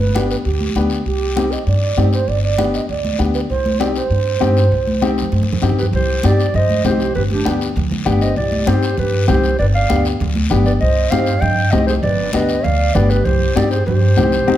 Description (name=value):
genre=latin, cumbia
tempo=197 BPM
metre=4/4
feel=straight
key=C harmonic minor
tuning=A4 = 442 Hz
part: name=breathy bass bansuri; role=second line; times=0.0-14.6 s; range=D4 to Eb5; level=-23 LUFS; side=right 6 dB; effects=none
part: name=upright bass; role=bass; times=0.0-14.6 s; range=G1 to G2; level=-18 LUFS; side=equal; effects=none
part: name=congas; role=percussion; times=0.0-14.6 s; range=none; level=-22 LUFS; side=right 1 dB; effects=none
part: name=dark upright piano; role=accompaniment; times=0.1-14.6 s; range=B3 to G4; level=-21 LUFS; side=left 5 dB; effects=none
part: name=guiro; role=percussion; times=0.2-14.6 s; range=none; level=-31 LUFS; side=left 6 dB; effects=none
part: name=dark clarinet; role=melody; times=5.8-14.6 s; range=G4 to G5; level=-20 LUFS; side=equal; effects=none
room=moderate large studio reverb, RT60 1.5 s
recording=none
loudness=-14 LUFS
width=side -12 dB against mid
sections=0.0-5.9 A section; 5.9-14.6 B section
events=bansuri solo 0.0-5.9; drum fill 5.0-5.9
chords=0.0 G; 1.1 Cm; 2.3 G; 3.5 Cm; 7.2 G; 8.4 Cm; 9.6 G7; 10.8 Cm; 12.0 G7; 13.3 Cm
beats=0.15 0.46 0.76 | 1.06 1.37 1.67 1.98 | 2.28 2.58 2.89 3.19 | 3.50 3.80 4.11 4.41 | 4.71 5.02 5.32 5.63 | 5.93 6.24 6.54 6.85 | 7.15 7.46 7.76 8.06 | 8.37 8.68 8.98 9.29 | 9.59 9.90 10.20 10.51 | 10.81 11.12 11.43 11.73 | 12.04 12.34 12.65 12.95 | 13.26 13.56 13.87 14.18 | 14.48